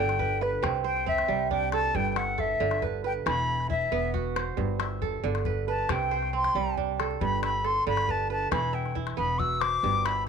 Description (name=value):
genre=west african traditional, West African string and xylophone music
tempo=91 BPM (dotted quarters)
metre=12/8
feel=straight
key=G major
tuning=A4 = 438 Hz
part: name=silver concert flute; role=melody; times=0.0-10.3 s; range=B4 to E6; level=-28 LUFS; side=left 2 dB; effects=none
part: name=kora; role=arpeggios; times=0.0-10.3 s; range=G2 to E5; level=-30 LUFS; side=right 11 dB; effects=none
part: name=upright bass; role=bass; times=0.0-10.3 s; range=E1 to C2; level=-33 LUFS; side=left 2 dB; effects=none
part: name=calabash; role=percussion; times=0.1-10.2 s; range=none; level=-34 LUFS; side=left 9 dB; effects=none
room=light reverb, small room ambience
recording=1960s-style stereo with parts hard left and right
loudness=-25 LUFS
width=side -6 dB against mid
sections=0.0-10.3 A section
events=flute solo 0.0-10.3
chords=0.0 G; 0.6 C; 1.9 G; 3.3 E5; 4.6 G; 5.9 C5; 7.2 G; 8.5 E5